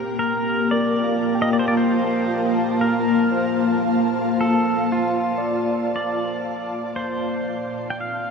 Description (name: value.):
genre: ambient.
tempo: 58 BPM.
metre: 4/4.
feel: straight.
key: Bb major.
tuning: A4 = 440 Hz.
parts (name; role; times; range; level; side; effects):
pedal steel guitar; melody; 0.0-8.3 s; F4 to G5; -25 LUFS; right 1 dB; tape echo.
ethereal airy pad; sustained chords; 0.0-8.3 s; Bb2 to A5; -21 LUFS; left 1 dB; ensemble chorus, built-in reverb, tremolo.
tine electric piano; arpeggios; 0.0-8.3 s; G4 to G5; -29 LUFS; equal; fast tremolo, tape echo.
room: wet shimmer reverb, RT60 7.8 s.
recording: none.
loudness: -19 LUFS.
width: side -5 dB against mid.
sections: 0.0-8.3 A section.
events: fade-out 4.2-8.3.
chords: 0.0 Bbmaj7; 6.9 Cmadd9/Bb.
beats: 0.74 1.77 | 2.81 3.84 4.87 5.91 | 6.94 7.98.